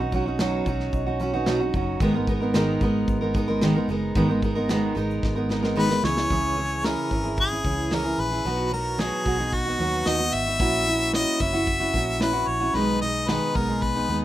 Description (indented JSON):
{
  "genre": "acoustic pop",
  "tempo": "112 BPM",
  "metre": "4/4",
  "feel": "straight",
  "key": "B major",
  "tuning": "A4 = 439 Hz",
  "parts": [
    { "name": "picked steel-string acoustic guitar", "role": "accompaniment", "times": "0.0-14.2 s", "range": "G#2 to A#4", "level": "-24 LUFS", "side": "right 1 dB", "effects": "none" },
    { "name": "vintage muted fingered electric bass", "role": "bass", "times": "0.0-14.2 s", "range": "F#1 to D#2", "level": "-31 LUFS", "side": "equal", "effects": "none" },
    { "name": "modern studio drum kit", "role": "drums", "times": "0.1-14.2 s", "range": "kick drum, shaker, snare drum", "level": "-29 LUFS", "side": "equal", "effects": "none" },
    { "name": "vibraphone with soft mallets", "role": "second line", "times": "0.9-2.0, 5.6-6.2 s", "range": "F#3 to D#5", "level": "-32 LUFS", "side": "left 3 dB", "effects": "none" },
    { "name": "clear harmonica", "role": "melody", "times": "5.8-14.2 s", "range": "F#4 to E5", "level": "-25 LUFS", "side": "left 2 dB", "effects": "none" }
  ],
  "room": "light reverb",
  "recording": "rough home demo mix",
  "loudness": "-21 LUFS",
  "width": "side -13 dB against mid",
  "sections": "0.0-6.3 A section; 6.3-14.2 B section",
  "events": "drum fill 5.2-6.3",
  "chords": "0.0 Badd9; 2.0 G#madd9; 6.0 C#m; 8.5 B; 10.6 F#7; 12.7 G#m/B"
}